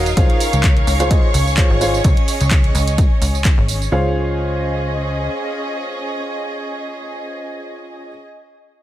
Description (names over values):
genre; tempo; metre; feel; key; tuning
piano house; 128 BPM; 4/4; swing 54% on 16ths; Db major; A4 = 440 Hz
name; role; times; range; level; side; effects
string machine, violins; sustained chords; 0.0-3.9 s; Db5 to Eb6; -26 LUFS; left 1 dB; ensemble chorus, sidechain pumping
clear upright piano; riff; 0.0-8.1 s; F4 to F5; -24 LUFS; equal; sidechain pumping, tape echo
plucky analog bass; bass; 0.0-5.3 s; Eb1 to Db2; -19 LUFS; equal; tube saturation, sidechain pumping
dark studio string section; texture; 0.0-8.2 s; Db4 to F5; -25 LUFS; right 2 dB; sidechain pumping
punchy analog drum machine; drums; 0.1-3.9 s; handclaps, hi-hat, tambourine; -23 LUFS; right 2 dB; none
electronic kick drum; drums; 0.2-3.6 s; none; -15 LUFS; equal; none
room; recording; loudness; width
little or no reverb; none; -14 LUFS; side -13 dB against mid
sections
0.2-3.9 A section; 3.9-7.7 B section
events
break 0.0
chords
0.2 Dbmaj7